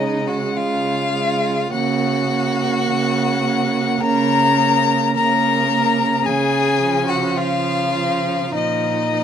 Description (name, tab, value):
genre	classical, slow romantic movement for string quartet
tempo	52 BPM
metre	4/4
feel	rubato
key	Db major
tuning	A4 = 438 Hz
part	warm violin	melody	0.0-9.2 s	Eb5 to Bb5	-20 LUFS	left 7 dB	none
part	clear violin	second line	0.0-9.2 s	Eb4 to Bb4	-23 LUFS	left 1 dB	none
part	rich viola	accompaniment	0.0-9.2 s	F3 to Bb3	-23 LUFS	right 7 dB	none
part	rich cello	bass	0.0-9.2 s	Bb2 to Db3	-22 LUFS	right 4 dB	none
room	moderate studio reverb, RT60 0.7 s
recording	dark, warm production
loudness	-16 LUFS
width	side -8 dB against mid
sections	0.0-9.2 A section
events	none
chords	0.0 Db; 1.7 Gb/Db; 6.2 Db; 8.5 Bb5